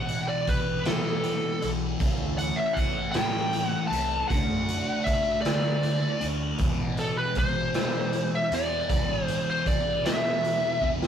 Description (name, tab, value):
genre	psychedelic rock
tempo	52 BPM (dotted quarters)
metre	6/8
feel	straight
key	E minor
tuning	A4 = 440 Hz
part	fuzz lead guitar	melody	0.0-10.9 s	A4 to A5	-28 LUFS	equal	distortion
part	bright tonewheel organ	sustained chords	0.0-11.1 s	E3 to A4	-44 LUFS	right 4 dB	none
part	thick fuzz guitar	riff	0.0-11.1 s	E2 to D4	-30 LUFS	equal	distortion, phaser
part	overdriven fingered electric bass	bass	0.0-11.1 s	A1 to E3	-34 LUFS	equal	none
part	raw garage drum kit	drums	0.1-11.1 s	hi-hat, kick drum, snare drum	-29 LUFS	equal	none
room	wet stone room reverb, RT60 1.0 s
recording	rough rehearsal-room recording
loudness	-24 LUFS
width	side -8 dB against mid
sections	0.0-11.1 A section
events	drum fill 10.8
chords	0.0 Em; 2.0 Am; 4.3 Dadd9; 6.6 Em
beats	0.86 | 2.01 3.16 | 4.31 5.45 | 6.60 7.75 | 8.90 10.04